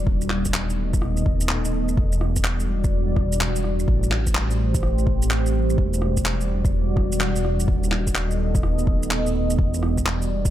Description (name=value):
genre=future garage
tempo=126 BPM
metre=4/4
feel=swing 64% on 16ths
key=E minor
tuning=A4 = 440 Hz
part: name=deep dark ambient pad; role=sustained chords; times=0.0-10.5 s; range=G3 to D#5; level=-26 LUFS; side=right 1 dB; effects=chorus, built-in reverb, vintage 12-bit sampler grit, sidechain pumping
part: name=dark detuned saw bass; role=bass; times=0.0-10.5 s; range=D#1 to A1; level=-23 LUFS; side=equal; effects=sidechain pumping
part: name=electronic kick drum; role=drums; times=0.1-10.5 s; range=none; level=-23 LUFS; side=equal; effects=overdrive
part: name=electronic shaker, rim click and handclaps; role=drums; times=0.2-10.5 s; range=none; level=-28 LUFS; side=equal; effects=overdrive
room=light reverb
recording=none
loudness=-20 LUFS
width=side -12 dB against mid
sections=0.0-10.5 A section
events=none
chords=0.1 B7/D#; 2.0 Em9; 3.9 Am7; 5.8 Em9; 7.7 B7/D#; 9.6 Em9